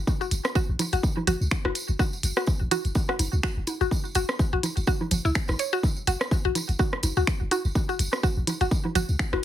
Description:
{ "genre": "minimal techno", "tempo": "125 BPM", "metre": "4/4", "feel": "swing 56% on 16ths", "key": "F# minor", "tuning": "A4 = 437 Hz", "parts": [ { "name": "punchy sub bass", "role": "bass", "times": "0.0-9.4 s", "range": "F#1 to C#2", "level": "-26 LUFS", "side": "equal", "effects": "sidechain pumping" }, { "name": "electronic kick drum", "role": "drums", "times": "0.1-9.3 s", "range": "none", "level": "-25 LUFS", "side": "equal", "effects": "studio reverb" }, { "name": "tambourine", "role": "percussion", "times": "0.1-9.3 s", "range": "none", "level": "-36 LUFS", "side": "right 3 dB", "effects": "none" }, { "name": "mallet-like synth pluck", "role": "riff", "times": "0.2-9.4 s", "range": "E4 to C#5", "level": "-29 LUFS", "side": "left 1 dB", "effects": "chorus, phaser, sidechain pumping, tape echo" }, { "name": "minimal click drum kit", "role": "drums", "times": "0.3-9.3 s", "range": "finger snaps, hi-hat", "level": "-29 LUFS", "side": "left 1 dB", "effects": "studio reverb" }, { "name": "electronic rim click, bongos and congas", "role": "percussion", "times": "0.4-9.4 s", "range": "none", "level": "-29 LUFS", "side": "right 2 dB", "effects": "overdrive, studio reverb, ping-pong delay" } ], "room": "little or no reverb", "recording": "heavily compressed radio sound", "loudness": "-23 LUFS", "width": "side -12 dB against mid", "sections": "0.0-9.4 A section", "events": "none", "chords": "none" }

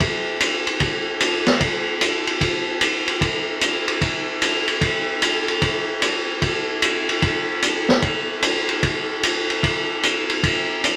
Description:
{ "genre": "country", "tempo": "150 BPM", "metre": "4/4", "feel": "swing 66% on 8ths", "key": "none", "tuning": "none", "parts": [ { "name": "vintage drum kit", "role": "drums", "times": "0.0-11.0 s", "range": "hi-hat, kick drum, ride cymbal, snare drum", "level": "-20 LUFS", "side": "equal", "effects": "none" } ], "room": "moderate studio reverb, RT60 0.6 s", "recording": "vinyl crackle", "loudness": "-20 LUFS", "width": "mono", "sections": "0.0-11.0 A section", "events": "none", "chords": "none" }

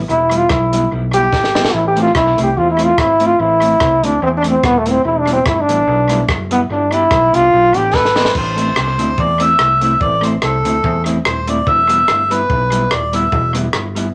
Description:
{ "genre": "ska", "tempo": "145 BPM", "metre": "4/4", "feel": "swing 55% on 8ths", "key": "A minor", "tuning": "A4 = 440 Hz", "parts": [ { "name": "fingered electric bass", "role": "bass", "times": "0.0-14.1 s", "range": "D#1 to E2", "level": "-23 LUFS", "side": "equal", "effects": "none" }, { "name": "clear trombone", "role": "melody", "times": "0.1-8.4 s", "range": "A3 to B4", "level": "-15 LUFS", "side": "equal", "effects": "none" }, { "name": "compact cocktail drum kit", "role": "drums", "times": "0.1-14.1 s", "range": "crash cymbal, hi-hat, kick drum, rim click, snare drum", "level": "-23 LUFS", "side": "equal", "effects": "tape echo" }, { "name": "vintage hollow-body jazz guitar", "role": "accompaniment", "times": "0.3-14.1 s", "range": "G3 to G4", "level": "-24 LUFS", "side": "equal", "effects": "tape echo" }, { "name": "melodica", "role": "melody", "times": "8.0-13.5 s", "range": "A4 to E5", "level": "-17 LUFS", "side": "equal", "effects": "none" } ], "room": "moderate studio ambience, RT60 0.5 s", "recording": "none", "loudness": "-14 LUFS", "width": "mono", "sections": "0.0-8.4 A section; 8.4-14.1 B section", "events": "trombone solo 0.0-8.4; drum fill 1.3-1.7, 7.9-8.4", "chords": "0.0 Em; 1.7 Am; 5.0 Em; 6.7 G; 8.4 Am; 11.7 Em" }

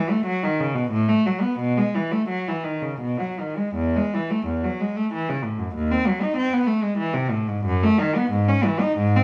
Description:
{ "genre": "classical, baroque-style suite movement for unaccompanied cello", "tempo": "80-97 BPM", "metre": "3/4", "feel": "rubato", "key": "E major", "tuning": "A4 = 436 Hz", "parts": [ { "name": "rich cello", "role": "solo", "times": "0.0-9.2 s", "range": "D#2 to D#4", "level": "-23 LUFS", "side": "equal", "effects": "none" } ], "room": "light reverb", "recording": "small room ambience", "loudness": "-23 LUFS", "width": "mono", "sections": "0.0-9.2 A section", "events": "none", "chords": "none" }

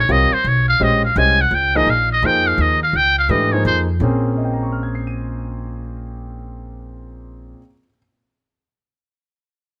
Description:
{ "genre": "modal jazz", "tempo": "169 BPM", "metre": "3/4", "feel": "swing 64% on 8ths", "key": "Bb dorian", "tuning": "A4 = 440 Hz", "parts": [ { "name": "trumpet with metal mute", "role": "melody", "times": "0.0-3.8 s", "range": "C5 to Ab5", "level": "-18 LUFS", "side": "equal", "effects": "none" }, { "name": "upright bass", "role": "bass", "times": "0.0-7.5 s", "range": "Bb1 to Ab2", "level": "-24 LUFS", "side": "equal", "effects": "none" }, { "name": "clear concert grand piano", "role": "accompaniment", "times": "0.1-8.0 s", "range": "Bb2 to Eb7", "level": "-25 LUFS", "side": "equal", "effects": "none" } ], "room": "light reverb", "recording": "close, detailed microphones", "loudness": "-17 LUFS", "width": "mono", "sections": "0.0-4.0 A section; 4.0-6.1 B section", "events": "muted trumpet solo 0.0-4.0", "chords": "0.0 Bbm9; 1.9 Db6/Bb; 4.0 Bbm9" }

